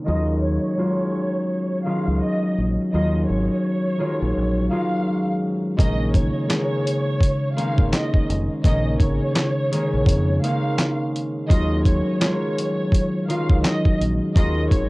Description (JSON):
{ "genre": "hip hop, boom-bap hip-hop", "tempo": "84 BPM", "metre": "4/4", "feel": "swing 59% on 16ths", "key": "Bb minor", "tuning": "A4 = 440 Hz", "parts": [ { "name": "concert harp", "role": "accompaniment", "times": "0.0-14.9 s", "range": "Db3 to F4", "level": "-22 LUFS", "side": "equal", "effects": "cassette tape, high-pass filter, low-pass filter" }, { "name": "dark studio violin section", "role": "melody", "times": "0.1-14.9 s", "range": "Db5 to F5", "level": "-28 LUFS", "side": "right 1 dB", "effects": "high-pass filter, low-pass filter, cassette tape, plate reverb, tape echo" }, { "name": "deep dub fingered electric bass", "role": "bass", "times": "0.1-14.9 s", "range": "F1 to F2", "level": "-23 LUFS", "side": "equal", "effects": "tube saturation" }, { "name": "dusty soul sampler-style drum kit", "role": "drums", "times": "5.8-14.9 s", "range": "handclaps, hi-hat, kick drum, snare drum", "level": "-19 LUFS", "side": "equal", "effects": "cassette tape" } ], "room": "moderate booth ambience, RT60 0.3 s", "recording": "home recording on cassette", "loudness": "-19 LUFS", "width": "side -22 dB against mid", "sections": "0.0-5.8 A section; 5.8-14.9 B section", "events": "filter sweep 0.0-5.8", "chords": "0.1 Ebm11; 5.8 Bbm11; 11.5 Ebm11" }